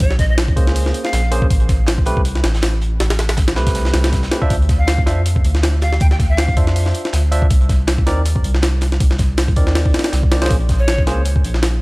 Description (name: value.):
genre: drum and bass, jungle.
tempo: 160 BPM.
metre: 4/4.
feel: swing 55% on 16ths.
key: D minor.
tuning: A4 = 440 Hz.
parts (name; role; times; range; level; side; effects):
breathy bright jazz flute; melody; 0.0-1.3, 4.8-6.6, 10.8-11.0 s; Db5 to G5; -26 LUFS; equal; dub echo.
soft dub sub bass; bass; 0.0-11.8 s; A1 to F2; -17 LUFS; equal; tube saturation.
crunchy breakbeat drum kit; drums; 0.0-11.7 s; hi-hat, snare drum; -32 LUFS; right 1 dB; high-pass filter on hats, high-pass filter on snare, high-pass filter on room.
jungle sampler-style drum kit; drums; 0.0-11.7 s; hi-hat, kick drum, snare drum; -17 LUFS; equal; none.
barky tine electric piano; stabs; 0.6-11.2 s; A3 to E5; -24 LUFS; right 1 dB; dub echo.
room: studio reverb.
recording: dry, gritty hardware recording.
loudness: -13 LUFS.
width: side -23 dB against mid.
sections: 0.0-11.8 A section.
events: none.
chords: 0.0 Bbm9; 1.5 Am9; 4.5 Dm9; 7.5 Cm9; 10.5 Bbm.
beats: | 0.01 0.38 0.76 1.13 | 1.50 1.88 2.25 2.63 | 3.00 3.38 3.75 4.13 | 4.50 4.88 5.25 5.63 | 6.00 6.38 6.75 7.13 | 7.50 7.88 8.26 8.63 | 9.01 9.38 9.76 10.13 | 10.51 10.88 11.26 11.63.